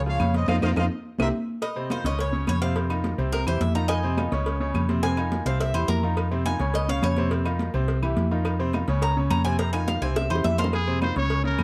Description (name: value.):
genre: latin, salsa.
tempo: 211 BPM.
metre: 4/4.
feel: straight.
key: F minor.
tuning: A4 = 440 Hz.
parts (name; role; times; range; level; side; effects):
hollow-body short-scale fingered electric bass; bass; 0.0-11.6 s; C2 to F2; -28 LUFS; equal; none.
mellow trumpet section; melody; 0.1-1.3 s; Bb4 to F5; -32 LUFS; equal; none.
clear baby grand piano; accompaniment; 0.1-11.6 s; C3 to Db5; -31 LUFS; equal; none.
congas; percussion; 0.1-11.6 s; none; -34 LUFS; equal; none.
agogo bells and timbales; percussion; 0.2-11.6 s; none; -38 LUFS; equal; none.
claves; percussion; 0.2-11.6 s; none; -41 LUFS; equal; none.
cowbell and bongos; percussion; 0.2-11.6 s; none; -37 LUFS; equal; none.
Cuban tres; melody; 1.6-10.7 s; Bb4 to Bb5; -32 LUFS; equal; none.
bright trumpet; melody; 10.7-11.6 s; Ab4 to Db5; -30 LUFS; equal; none.
room: light reverb.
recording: dark, warm production.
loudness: -25 LUFS.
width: mono.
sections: 0.0-1.6 A section; 1.6-10.7 B section.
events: band accent 0.5-1.6; drum fill 0.8-1.6, 10.0-10.7; Cuban tres solo 1.6-10.7.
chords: 0.5 F5; 1.1 C; 1.6 F5; 2.2 Db; 2.8 F5; 3.3 C; 3.9 Dbadd9; 5.0 Fm7; 5.6 C7; 6.2 Fm7; 6.7 Db; 7.3 F5; 7.9 C; 8.5 F5; 9.0 Db; 9.6 F5; 10.2 C; 10.7 Fm7.